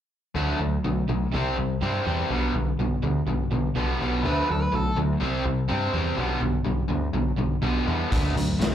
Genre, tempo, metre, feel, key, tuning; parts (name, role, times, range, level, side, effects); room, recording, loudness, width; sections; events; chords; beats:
classic rock; 124 BPM; 4/4; straight; D major; A4 = 437 Hz
distorted electric guitar; riff; 0.3-8.7 s; G2 to D4; -28 LUFS; left 8 dB; distortion, slapback echo
overdriven electric guitar; riff; 0.4-8.7 s; B2 to C4; -29 LUFS; right 8 dB
growling picked electric bass; bass; 0.4-8.7 s; B1 to G2; -26 LUFS; equal; overdrive
octave-fuzz lead guitar; second line; 4.3-5.0 s; A4 to B4; -27 LUFS; equal; distortion
raw garage drum kit; drums; 8.1-8.7 s; hi-hat, kick drum, snare drum; -24 LUFS; equal
light reverb; live gig heard through the venue's PA, club reverb; -23 LUFS; side -10 dB against mid
0.4-8.7 A section
0.4 D; 1.3 C; 2.3 G/B; 4.2 D; 5.2 C; 6.2 G/B; 8.1 D
| 0.35 0.84 1.33 1.81 | 2.30 2.79 3.27 3.76 | 4.24 4.73 5.21 5.70 | 6.18 6.67 7.16 7.64 | 8.13 8.61